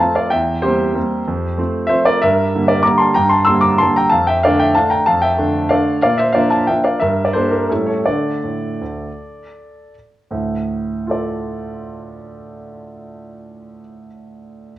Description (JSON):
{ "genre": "classical, piano waltz", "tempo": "152-197 BPM", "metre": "3/4", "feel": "rubato", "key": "D minor", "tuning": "A4 = 440 Hz", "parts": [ { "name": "clear concert grand piano", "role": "solo", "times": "0.0-14.7 s", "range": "D2 to E6", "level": "-15 LUFS", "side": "equal", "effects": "none" } ], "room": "moderate large studio reverb, RT60 1.2 s", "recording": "worn, warbling old tape, cassette tape, warbly pitch drift", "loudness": "-14 LUFS", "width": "side -14 dB against mid", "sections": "0.0-10.3 A section; 10.3-12.6 B section", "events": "slowing down 7.5-10.3", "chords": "0.3 C7/E; 1.3 F; 2.2 Gm; 4.1 Dm/F; 6.0 Bb; 7.0 Gm69; 7.7 A7; 8.1 D5; 10.3 Dm" }